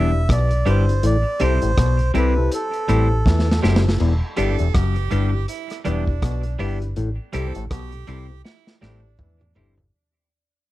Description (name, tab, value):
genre	roots reggae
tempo	81 BPM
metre	4/4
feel	swing 59% on 16ths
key	unclear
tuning	A4 = 437 Hz
part	melodica	melody	0.0-3.6 s	A4 to E5	-25 LUFS	right 2 dB	tape echo
part	clean electric guitar	accompaniment	0.0-9.7 s	G3 to G4	-28 LUFS	right 4 dB	tape echo
part	overdriven clav	riff	0.0-9.8 s	E2 to E3	-25 LUFS	left 4 dB	phaser
part	warm upright piano	stabs	0.0-9.8 s	C4 to B4	-28 LUFS	left 6 dB	none
part	vintage muted fingered electric bass	bass	0.0-9.9 s	E1 to E2	-20 LUFS	equal	none
part	crunchy breakbeat drum kit	drums	0.3-9.9 s	crash cymbal, hi-hat, kick drum, rim click, snare drum, toms	-22 LUFS	equal	slapback echo
part	edgy tenor saxophone	second line	4.4-9.5 s	D4 to A4	-33 LUFS	right 12 dB	tape echo
room	small room ambience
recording	dry, close 1970s-style studio recording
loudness	-17 LUFS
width	side -16 dB against mid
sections	0.0-4.0 A section; 4.0-9.9 B section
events	drum fill 3.3-4.0, 8.4-9.9; fade-out 4.0-9.9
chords	0.0 Em7; 1.0 Am7; 4.0 Em7; 7.0 Am7